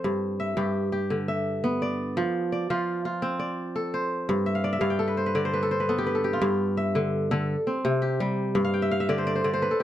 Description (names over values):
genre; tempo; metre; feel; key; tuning
west african traditional; 113 BPM (dotted quarters); 12/8; straight; G mixolydian; A4 = 441 Hz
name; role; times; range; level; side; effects
kora; solo; 0.0-9.8 s; G2 to G5; -24 LUFS; equal; none
room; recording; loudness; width
light reverb; dark, warm production; -24 LUFS; side -12 dB against mid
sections
0.0-6.4 A section; 6.4-9.8 B section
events
kora fill 4.5-6.4, 8.6-9.8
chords
0.0 G; 2.2 F; 4.3 G; 6.4 G5; 7.5 C5; 8.6 G5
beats
| 0.04 0.57 1.10 1.64 | 2.17 2.70 3.23 3.76 | 4.29 4.83 5.36 5.89 | 6.42 6.96 7.49 8.02 | 8.55 9.09 9.62